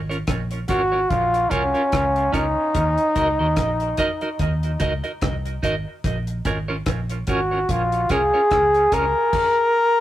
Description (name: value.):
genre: roots reggae.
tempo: 73 BPM.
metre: 4/4.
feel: swing 57% on 16ths.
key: Bb minor.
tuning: A4 = 440 Hz.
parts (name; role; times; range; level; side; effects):
vintage muted fingered electric bass; bass; 0.0-9.1 s; Ab1 to Eb2; -26 LUFS; equal; none.
clean electric guitar; accompaniment; 0.1-9.0 s; Db4 to Eb5; -28 LUFS; right 2 dB; tremolo, dub echo.
deep reggae drum kit; drums; 0.1-9.6 s; crash cymbal, hi-hat, kick drum, rim click; -27 LUFS; equal; none.
warm flugelhorn; melody; 0.7-10.0 s; Db4 to Bb4; -19 LUFS; equal; dub echo.
room: moderate studio reverb, RT60 0.6 s.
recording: rough rehearsal-room recording, tube saturation.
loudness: -18 LUFS.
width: side -13 dB against mid.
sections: 0.0-10.0 A section.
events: none.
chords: 0.0 Bbm; 2.7 Ebm; 6.0 Bbm; 9.3 N.C..